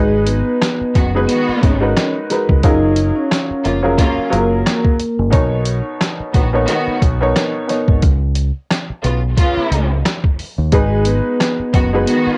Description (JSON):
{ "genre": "hip hop, boom-bap hip-hop", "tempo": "89 BPM", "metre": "4/4", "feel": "swing 57% on 16ths", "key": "unclear", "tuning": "A4 = 438 Hz", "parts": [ { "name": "vibraphone with soft mallets", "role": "melody", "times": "0.0-5.3, 10.7-12.4 s", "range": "G#3 to D#5", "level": "-20 LUFS", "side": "equal", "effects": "high-pass filter, low-pass filter, cassette tape" }, { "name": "warm upright piano", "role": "accompaniment", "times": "0.0-12.4 s", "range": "B2 to C#5", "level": "-22 LUFS", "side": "equal", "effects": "cassette tape, high-pass filter, low-pass filter" }, { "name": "deep dub fingered electric bass", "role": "bass", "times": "0.0-12.3 s", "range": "E#1 to D#2", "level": "-20 LUFS", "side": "equal", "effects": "none" }, { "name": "trip hop sampler-style drum kit", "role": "drums", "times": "0.3-12.3 s", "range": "hi-hat, kick drum, rim click, snare drum", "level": "-18 LUFS", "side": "equal", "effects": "cassette tape" }, { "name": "rich symphonic string section", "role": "stabs", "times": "1.0-12.4 s", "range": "C#3 to F#4", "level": "-24 LUFS", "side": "equal", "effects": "high-pass filter, low-pass filter, cassette tape, analog delay" } ], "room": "little or no reverb", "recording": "home recording on cassette", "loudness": "-16 LUFS", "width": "mono", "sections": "0.0-12.4 A section", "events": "none", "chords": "0.0 G#m7; 2.6 F#maj7; 5.3 Bmaj7; 8.0 Bsus2; 10.7 G#m7" }